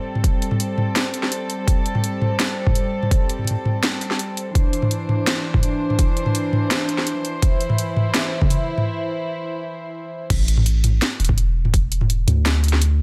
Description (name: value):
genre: half-time drum and bass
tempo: 167 BPM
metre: 4/4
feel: half-time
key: A minor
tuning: A4 = 440 Hz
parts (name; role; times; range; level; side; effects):
- dark chamber string section; sustained chords; 0.0-10.3 s; E3 to C5; -27 LUFS; equal; sidechain pumping
- drum and bass drum kit; drums; 0.2-12.9 s; crash cymbal, hi-hat, snare drum, toms; -24 LUFS; equal; overdrive
- electronic kick drum; drums; 0.2-11.8 s; none; -21 LUFS; equal; overdrive
- long sustained 808-style bass; bass; 10.3-13.0 s; E1 to D2; -20 LUFS; equal; none
room: light reverb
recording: none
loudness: -21 LUFS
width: mono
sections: 0.0-10.3 A section; 10.3-13.0 B section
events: build-up 0.0-10.3; break 8.9-10.3; drop 10.3-13.0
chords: 0.0 Am7; 4.6 Cadd9; 10.3 A5